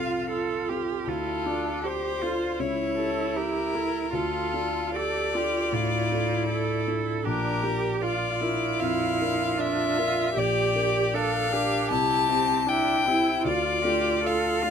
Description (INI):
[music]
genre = classical, slow romantic movement for piano quartet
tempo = 78 BPM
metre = 4/4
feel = rubato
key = unclear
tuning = A4 = 440 Hz
[part]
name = rich violin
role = melody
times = 0.0-14.7 s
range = A4 to A5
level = -27 LUFS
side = left 6 dB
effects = none
[part]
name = rich cello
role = second line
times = 0.0-14.7 s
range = D4 to A4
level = -30 LUFS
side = right 7 dB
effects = none
[part]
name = dark baby grand piano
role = accompaniment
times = 0.0-14.7 s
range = Bb1 to Bb4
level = -30 LUFS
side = left 2 dB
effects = none
[part]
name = warm viola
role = accompaniment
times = 0.0-14.7 s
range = C4 to A4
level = -30 LUFS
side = right 3 dB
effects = none
[sound]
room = light reverb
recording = close, detailed microphones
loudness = -23 LUFS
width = side -7 dB against mid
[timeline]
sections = 0.0-14.7 A section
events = none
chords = 0.0 F; 1.1 Dm; 2.6 A7/C#; 4.1 Dm; 7.3 Bb; 10.4 Gm/Bb; 11.9 C; 13.5 Dm